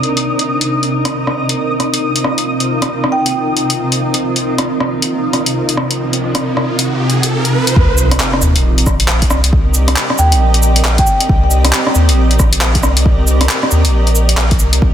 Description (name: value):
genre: future garage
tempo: 136 BPM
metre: 4/4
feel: swing 61% on 16ths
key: C minor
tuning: A4 = 436 Hz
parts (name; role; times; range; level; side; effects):
- granular cloud pad; sustained chords; 0.0-14.9 s; C3 to Eb5; -17 LUFS; equal; built-in reverb, sidechain pumping
- deep house drum kit; drums; 0.0-14.8 s; cabasa, handclaps, hi-hat, rim click; -16 LUFS; left 1 dB; low-pass filter on hats, soft clipping on snare, low-pass filter on snare, low-pass filter on perc, low-pass filter on room
- flickering grainy texture; texture; 0.0-7.8 s; Eb6; -24 LUFS; equal; built-in reverb
- marimba with soft mallets; melody; 3.1-3.4, 10.2-11.4 s; G5; -18 LUFS; right 1 dB; ping-pong delay
- riser and sub drop; sound effects; 6.1-9.5 s; none; -20 LUFS; right 1 dB; none
- warm sub bass; bass; 7.8-14.9 s; Bb1 to Eb2; -12 LUFS; equal; sidechain pumping
- electronic kick drum; drums; 7.8-14.9 s; none; -14 LUFS; equal; none
room: moderate lush hall reverb, RT60 1.9 s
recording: dense, heavily limited modern master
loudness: -11 LUFS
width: side -10 dB against mid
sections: 0.0-7.8 A section; 7.8-14.9 B section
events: riser 6.1-7.8; impact 7.8-9.5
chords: 0.0 Cm7; 0.7 Ebsus2/C; 7.8 Cm7